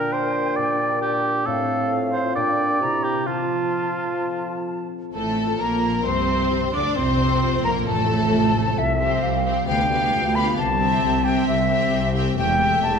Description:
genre	classical, dramatic, fast romantic movement for symphony orchestra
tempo	133 BPM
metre	4/4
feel	straight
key	F major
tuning	A4 = 440 Hz
part	silver concert flute	second line	0.0-13.0 s	E5 to D6	-24 LUFS	left 1 dB	none
part	warm clarinet	second line	0.0-4.9 s	C4 to F4	-30 LUFS	equal	none
part	warm oboe	second line	0.0-4.7 s	F4 to D5	-24 LUFS	right 2 dB	none
part	warm bassoon	accompaniment	0.0-4.9 s	A2 to F3	-28 LUFS	right 2 dB	none
part	concert harp	arpeggios	0.0-13.0 s	F2 to F5	-28 LUFS	left 8 dB	none
part	warm symphonic violin section	melody	5.1-13.0 s	A4 to F5	-30 LUFS	left 4 dB	none
part	warm symphonic violin section	second line	5.1-13.0 s	G4 to D5	-30 LUFS	left 3 dB	none
part	rich studio viola section	accompaniment	5.1-13.0 s	A3 to D4	-27 LUFS	right 1 dB	none
part	rich symphonic double bass section	bass	5.1-13.0 s	E1 to D2	-26 LUFS	right 4 dB	none
part	warm symphonic cello section	bass	5.1-13.0 s	C2 to D3	-27 LUFS	right 2 dB	none
room	wet scoring stage reverb, RT60 1.6 s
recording	none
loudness	-19 LUFS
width	side -6 dB against mid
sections	0.0-5.1 A section; 5.1-13.0 B section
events	none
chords	0.0 Gm/Bb; 1.5 F/A; 2.4 Gm/Bb; 2.8 C7; 3.3 F; 5.1 F/A; 6.1 C7; 7.0 F; 8.8 C; 9.7 G7/D; 10.6 C; 12.4 A7(no3)/E

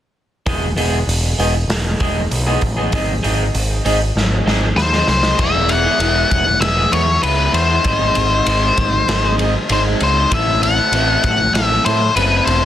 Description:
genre	quiet-loud alternative rock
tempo	98 BPM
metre	4/4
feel	straight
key	E major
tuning	A4 = 440 Hz
part	electric guitar through a small old amp	arpeggios	0.5-12.7 s	E2 to A4	-20 LUFS	equal	wide subtle chorus, analog delay
part	growling picked electric bass	bass	0.5-12.7 s	E1 to A2	-19 LUFS	equal	overdrive
part	raw garage drum kit	drums	0.5-12.6 s	crash cymbal, hi-hat, kick drum, ride cymbal, snare drum	-20 LUFS	equal	none
part	octave-fuzz lead guitar	melody	4.8-12.7 s	B4 to F#5	-16 LUFS	left 3 dB	distortion
room	light reverb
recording	dense, heavily limited modern master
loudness	-13 LUFS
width	side -11 dB against mid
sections	0.5-5.4 A section; 5.4-12.7 B section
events	drum fill 4.2-5.4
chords	0.5 E; 2.9 G#; 5.4 E; 7.9 G#; 10.3 Am

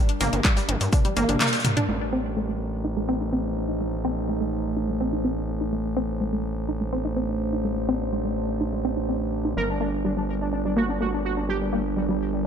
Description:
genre	melodic techno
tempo	125 BPM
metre	4/4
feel	straight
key	unclear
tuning	A4 = 440 Hz
part	deep dark ambient pad	sustained chords	0.0-12.5 s	G3 to C5	-32 LUFS	right 2 dB	chorus, built-in reverb, sidechain pumping
part	house drum kit	drums	0.1-2.0 s	crash cymbal, handclaps, hi-hat, toms	-25 LUFS	equal	low-pass filter on hats, low-pass filter on toms, low-pass filter on snare, low-pass filter on cymbals, low-pass filter on room
part	wide unison pluck	arpeggios	0.2-12.1 s	G3 to Eb4	-28 LUFS	equal	vintage 12-bit sampler grit, sidechain pumping, ping-pong delay
part	gritty driven synth bass	bass	0.2-12.5 s	G1 to G2	-28 LUFS	equal	distortion, sidechain pumping
part	shaker and snare drum	drums	0.2-1.8 s	none	-36 LUFS	equal	sidechain pumping on hats, high-pass filter on hats, high-pass filter on snare, sidechain pumping on perc, high-pass filter on perc, high-pass filter on room
part	electronic kick drum	drums	0.4-1.0 s	none	-21 LUFS	equal	none
part	resonant sweep polysynth	melody	9.6-12.5 s	G3 to Bb4	-29 LUFS	equal	chorus, ping-pong delay
room	moderate lush hall reverb, RT60 2.4 s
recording	dark, warm production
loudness	-23 LUFS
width	side -7 dB against mid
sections	0.0-1.9 A section; 1.9-12.5 B section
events	drum fill 0.9-1.9; band accent 1.4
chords	0.0 Gm; 1.9 Adim; 9.6 Gm

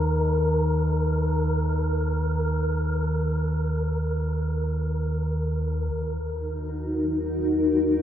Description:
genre	dark ambient drone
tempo	free time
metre	none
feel	none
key	Eb minor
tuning	A4 = 440 Hz
part	deep rumbling drone	drone	0.0-8.0 s	Eb2 to Eb3	-25 LUFS	equal	built-in reverb
part	wind-like tuned noise texture	texture	0.0-5.9 s	Bb4	-30 LUFS	left 1 dB	built-in reverb
part	granular cloud pad	sustained chords	6.7-8.0 s	Eb4 to Bb4	-23 LUFS	left 2 dB	built-in reverb
room	wet huge ambient reverb, RT60 7.3 s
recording	none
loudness	-23 LUFS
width	side -10 dB against mid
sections	0.0-5.9 A section; 5.9-8.0 B section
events	filter sweep on synth drone 5.9-8.0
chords	0.0 Eb5; 5.9 Ebm

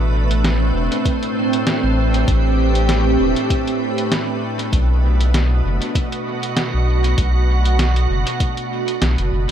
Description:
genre	ambient dub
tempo	98 BPM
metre	4/4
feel	swing 55% on 16ths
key	A dorian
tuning	A4 = 440 Hz
part	soft additive organ-like pad	sustained chords	0.0-9.5 s	A2 to B4	-20 LUFS	right 2 dB	ensemble chorus, built-in reverb
part	warm sub bass	bass	0.0-9.5 s	E1 to B1	-16 LUFS	equal	none
part	lo-fi sampler-style drum kit	drums	0.3-9.5 s	hi-hat, snare drum	-24 LUFS	equal	small room ambience, dub echo
part	electronic kick drum	drums	1.1-8.5 s	none	-20 LUFS	equal	small room ambience
room	light reverb, digital ambience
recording	none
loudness	-15 LUFS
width	side -10 dB against mid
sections	0.0-9.5 A section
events	none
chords	0.0 Am11; 4.7 Bm7

